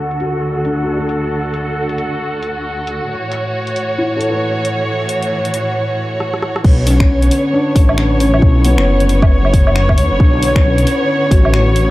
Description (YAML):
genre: future garage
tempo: 135 BPM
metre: 4/4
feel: swing 60% on 16ths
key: B minor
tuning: A4 = 440 Hz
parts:
  - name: warm studio string section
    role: sustained chords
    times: 0.0-11.9 s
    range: D2 to C#5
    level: -18 LUFS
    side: right 1 dB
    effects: sidechain pumping
  - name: drifting glass-harmonics texture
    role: texture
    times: 0.0-11.9 s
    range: C#5 to F#5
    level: -25 LUFS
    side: left 1 dB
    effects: chorus, built-in reverb
  - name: deep house drum kit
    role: drums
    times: 0.1-11.9 s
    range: crash cymbal, finger snaps, hi-hat, rim click, woodblock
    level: -22 LUFS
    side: right 1 dB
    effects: none
  - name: felt-muted upright piano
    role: accompaniment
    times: 0.2-11.9 s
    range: B3 to B4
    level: -20 LUFS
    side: left 1 dB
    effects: sidechain pumping, tape echo
  - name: dark detuned saw bass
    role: bass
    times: 6.6-11.9 s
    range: F#1 to E2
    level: -14 LUFS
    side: equal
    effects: sidechain pumping
  - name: electronic kick drum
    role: drums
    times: 6.6-11.4 s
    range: none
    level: -11 LUFS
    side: equal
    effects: none
room: little or no reverb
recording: dry, gritty hardware recording, low-pass filter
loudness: -12 LUFS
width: side -18 dB against mid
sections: 0.0-6.6 A section; 6.6-11.9 B section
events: filter sweep 0.0-6.6; drum fill 6.2-6.6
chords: 0.0 D; 3.1 A6; 6.6 Bmadd9